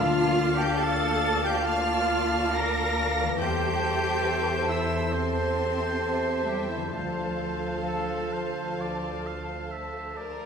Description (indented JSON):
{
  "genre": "cinematic, emotional film score for orchestra",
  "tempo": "64-72 BPM",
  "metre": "4/4",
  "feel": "rubato",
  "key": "D minor",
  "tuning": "A4 = 440 Hz",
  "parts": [
    { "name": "rich studio violin section", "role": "melody", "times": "0.0-10.5 s", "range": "Bb4 to Bb6", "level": "-36 LUFS", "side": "left 1 dB", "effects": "none" },
    { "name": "bright large flute ensemble", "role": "second line", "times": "0.0-10.2 s", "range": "A5", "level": "-37 LUFS", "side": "right 1 dB", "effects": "none" },
    { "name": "bright oboe", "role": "second line", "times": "0.0-10.5 s", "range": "A4 to F5", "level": "-35 LUFS", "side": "right 2 dB", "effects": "none" },
    { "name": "clear clarinet", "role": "second line", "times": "0.0-9.7 s", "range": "E4 to Bb5", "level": "-34 LUFS", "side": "right 1 dB", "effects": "none" },
    { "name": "warm symphonic violin section", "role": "second line", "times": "0.0-10.4 s", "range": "E5 to A5", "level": "-36 LUFS", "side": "left 1 dB", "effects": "none" },
    { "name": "rich studio viola section", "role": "accompaniment", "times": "0.0-10.4 s", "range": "Bb3 to D5", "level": "-36 LUFS", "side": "equal", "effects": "none" },
    { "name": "mellow French horn section", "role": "sustained chords", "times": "0.0-10.2 s", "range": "F4 to F5", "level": "-33 LUFS", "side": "equal", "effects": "none" },
    { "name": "concert harp", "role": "arpeggios", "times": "0.0-10.5 s", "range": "D3 to F4", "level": "-36 LUFS", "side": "left 8 dB", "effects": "none" },
    { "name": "rich studio cello section", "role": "bass", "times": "0.0-9.7 s", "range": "E3 to Bb4", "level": "-31 LUFS", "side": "right 1 dB", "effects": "none" },
    { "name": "rich studio double bass section", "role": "bass", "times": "0.0-10.4 s", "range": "D2 to E2", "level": "-34 LUFS", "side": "equal", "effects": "none" },
    { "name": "timpani", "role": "percussion", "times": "0.0-1.2, 6.9-8.3 s", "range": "D3", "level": "-35 LUFS", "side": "right 2 dB", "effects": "none" }
  ],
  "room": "wet scoring stage reverb, RT60 1.8 s",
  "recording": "minimal, uncompressed stereo recording",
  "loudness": "-24 LUFS",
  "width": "side -6 dB against mid",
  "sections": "0.0-10.5 A section",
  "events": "none",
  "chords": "0.0 Bbmaj7/D; 3.4 C6/E; 6.9 Dm7"
}